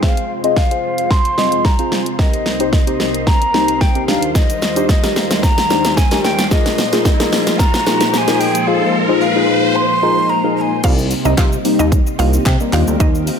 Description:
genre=dance-pop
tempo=111 BPM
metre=4/4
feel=straight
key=C minor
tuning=A4 = 440 Hz
part: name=breathy mellow tenor recorder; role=melody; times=0.0-10.8 s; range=Eb5 to C6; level=-19 LUFS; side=left 1 dB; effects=low-pass filter, ping-pong delay
part: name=deep mellow chord stab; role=accompaniment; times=0.0-13.3 s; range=G3 to Eb5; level=-19 LUFS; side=left 3 dB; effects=chorus, phaser, sidechain pumping, low-pass filter
part: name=ensemble organ-string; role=sustained chords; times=0.0-13.4 s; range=C2 to C5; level=-22 LUFS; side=equal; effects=ensemble chorus, sidechain pumping, low-pass filter
part: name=pop drum kit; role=drums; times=0.0-13.4 s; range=crash cymbal, handclaps, hi-hat, kick drum, shaker, snare drum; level=-16 LUFS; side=equal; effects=none
part: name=riser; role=sound effects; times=3.9-9.8 s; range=none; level=-23 LUFS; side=equal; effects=none
part: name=mallet-like synth pluck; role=melody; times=10.8-13.1 s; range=Eb4 to G5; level=-22 LUFS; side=right 1 dB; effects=chorus, sidechain pumping, ping-pong delay
part: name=chorused synth bass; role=bass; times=10.8-13.3 s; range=C2 to C3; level=-17 LUFS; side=equal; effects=sidechain pumping
room=light reverb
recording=none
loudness=-12 LUFS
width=side -7 dB against mid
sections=0.0-10.8 A section; 10.8-13.4 B section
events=build-up 0.0-10.8; drum fill 0.0-8.7; filter sweep 0.0-10.8; riser 3.9-10.8; drop 10.8-13.4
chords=0.0 Fm; 2.2 Cm7; 4.1 Ebmaj7; 6.5 Bb7sus4; 10.8 Cm7; 12.7 Ebmaj7

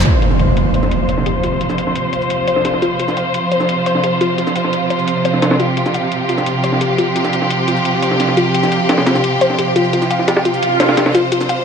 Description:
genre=dark technical drum and bass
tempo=173 BPM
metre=4/4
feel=straight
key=unclear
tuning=A4 = 441 Hz
part: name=clear studio string section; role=sustained chords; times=0.0-11.6 s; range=C3 to C5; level=-16 LUFS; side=right 1 dB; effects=low-pass filter
part: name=warbly dusty pluck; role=arpeggios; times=0.0-11.6 s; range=F4 to F5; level=-20 LUFS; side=left 3 dB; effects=chorus, dub echo
part: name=breakbeat sampler-style drum kit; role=drums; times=0.0-11.6 s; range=ride cymbal, snare drum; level=-21 LUFS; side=equal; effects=high-pass filter on cymbals, low-pass filter on cymbals, small room ambience, high-pass filter on snare, low-pass filter on snare
part: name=electronic hi-hat and cabasa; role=drums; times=0.0-11.6 s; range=none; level=-24 LUFS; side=left 2 dB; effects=low-pass filter on hats, small room ambience, low-pass filter on perc, low-pass filter on snare
part: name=impact and swell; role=sound effects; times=0.0-1.4, 10.5-11.1 s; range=none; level=-17 LUFS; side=right 1 dB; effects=none
room=moderate lush hall reverb, RT60 1.7 s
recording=none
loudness=-13 LUFS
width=side -6 dB against mid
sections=0.0-11.6 A section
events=impact 0.0-1.4; filter sweep on synth arpeggio sound 0.0-11.6; swell 10.5-11.1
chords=0.0 F5

